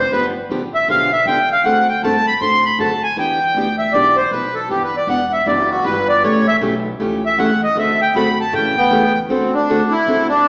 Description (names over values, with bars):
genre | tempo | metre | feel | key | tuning
acoustic string swing (jazz manouche) | 157 BPM | 4/4 | swing 62% on 8ths | unclear | A4 = 440 Hz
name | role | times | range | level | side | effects
accordion | melody | 0.0-10.5 s | B3 to C6 | -18 LUFS | equal | none
upright bass | bass | 0.0-10.5 s | E1 to A2 | -30 LUFS | equal | none
picked steel-string acoustic guitar | accompaniment | 0.1-10.3 s | C#3 to A4 | -23 LUFS | equal | none
room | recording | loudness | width
wet recital hall reverb, RT60 1.5 s | recorded in a church or concert hall, AM radio sound | -16 LUFS | mono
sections
0.0-9.3 A section; 9.3-10.5 B section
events
accordion solo 0.0-9.3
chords
0.0 G7; 1.6 D7; 3.2 Em7; 6.2 A7; 7.8 D7; 8.5 A7; 9.3 D7